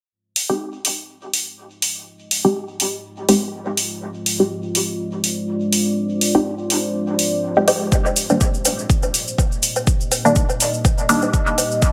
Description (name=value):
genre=dub techno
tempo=123 BPM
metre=4/4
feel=swing 55% on 16ths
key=F dorian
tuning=A4 = 440 Hz
part: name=deep dark ambient pad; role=sustained chords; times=3.2-11.9 s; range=Ab3 to Eb5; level=-27 LUFS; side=equal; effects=chorus, built-in reverb, sidechain pumping
part: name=electronic hi-hat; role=drums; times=0.4-11.7 s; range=none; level=-23 LUFS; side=equal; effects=studio reverb
part: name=filtered dub chord stab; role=stabs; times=0.5-11.3 s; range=Eb3 to G4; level=-22 LUFS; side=equal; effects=phaser, sidechain pumping, dub echo
part: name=electronic kick drum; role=drums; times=7.9-11.9 s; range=none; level=-20 LUFS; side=equal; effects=studio reverb
part: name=cabasa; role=percussion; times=7.9-11.9 s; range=none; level=-25 LUFS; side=equal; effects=none
part: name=woodblock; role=percussion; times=7.9-11.7 s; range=none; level=-29 LUFS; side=equal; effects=overdrive, sidechain pumping on perc, studio reverb, dub echo
room=moderate spring reverb, RT60 1.2 s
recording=none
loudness=-20 LUFS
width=mono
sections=0.1-11.9 A section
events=filter sweep on synth stab 0.1-11.9; filter sweep on ambient pad 0.1-11.9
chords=0.1 Fm7; 7.9 Cm7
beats=| 0.12 0.60 1.09 1.58 | 2.07 2.55 3.04 3.53 | 4.02 4.51 4.99 5.48 | 5.97 6.46 6.95 7.43 | 7.92 8.41 8.90 9.38 | 9.87 10.36 10.85 11.34 | 11.82